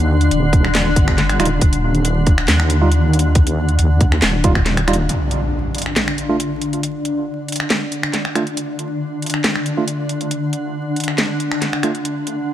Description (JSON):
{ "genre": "deep dubstep", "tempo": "138 BPM", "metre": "4/4", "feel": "half-time", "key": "unclear", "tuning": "A4 = 440 Hz", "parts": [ { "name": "granular cloud pad", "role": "sustained chords", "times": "0.0-12.5 s", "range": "D3 to D4", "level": "-21 LUFS", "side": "left 1 dB", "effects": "built-in reverb" }, { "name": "deep soft wobble bass", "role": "bass", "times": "0.0-5.1 s", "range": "Eb1 to Eb2", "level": "-16 LUFS", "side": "equal", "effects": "chorus" }, { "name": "garage drum kit", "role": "drums", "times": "0.2-12.4 s", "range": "finger snaps, handclaps, hi-hat, snare drum", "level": "-20 LUFS", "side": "equal", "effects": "none" }, { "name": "electronic kick drum", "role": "drums", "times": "0.5-4.6 s", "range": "none", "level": "-14 LUFS", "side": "equal", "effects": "none" }, { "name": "bright tine electric piano", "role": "stabs", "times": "1.4-11.9 s", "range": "G3 to F4", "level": "-24 LUFS", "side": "right 3 dB", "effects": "dub echo" }, { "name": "impact", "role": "sound effects", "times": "5.1-6.8 s", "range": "none", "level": "-24 LUFS", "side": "equal", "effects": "none" } ], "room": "light reverb", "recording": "vinyl crackle", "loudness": "-15 LUFS", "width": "side -12 dB against mid", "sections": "0.0-5.1 A section; 5.1-12.5 B section", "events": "impact 5.1-6.8; filter sweep on ambient pad 5.1-12.5", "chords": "0.0 Eb; 5.1 N.C.", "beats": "0.31 0.75 1.18 | 1.62 2.05 2.48 2.92 | 3.35 3.79 4.22 4.66 | 5.09 5.53 5.96 6.40 | 6.83 7.27 7.70 8.14 | 8.57 9.01 9.44 9.88 | 10.31 10.75 11.18 11.62 | 12.05 12.48" }